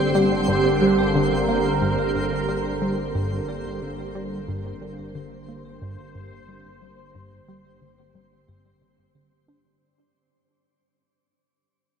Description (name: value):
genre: ambient, sequencer-driven space music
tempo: 90 BPM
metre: 4/4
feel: straight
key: G minor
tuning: A4 = 439 Hz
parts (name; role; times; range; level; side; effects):
- sweeping resonant pad; sustained chords; 0.0-9.8 s; D3 to C5; -24 LUFS; right 2 dB; chorus, shimmer reverb
- vibraphone with medium mallets; arpeggios; 0.0-9.8 s; G4; -32 LUFS; left 1 dB; auto-pan, tape echo, shimmer reverb
- warm sub bass; bass; 0.0-9.8 s; G1; -39 LUFS; equal; none
- twinkling granular texture; texture; 0.0-9.8 s; C4 to C5; -29 LUFS; left 1 dB; built-in reverb, shimmer reverb
- tight sequenced synth; riff; 0.1-9.7 s; G2 to D4; -27 LUFS; equal; chorus, phaser, tape echo
room: wet huge ambient reverb, RT60 7.5 s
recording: none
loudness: -20 LUFS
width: side -7 dB against mid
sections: 0.0-9.8 A section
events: fade-out on vibraphone 0.0-9.8; fade-out on sub bass 0.0-9.8; fade-out 0.0-9.8; filter sweep on synth arpeggio sound 0.0-9.8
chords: 0.0 Gm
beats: 0.48 1.15 | 1.82 2.48 3.15 3.82 | 4.48 5.15 5.82 6.48 | 7.15 7.82 8.48 9.15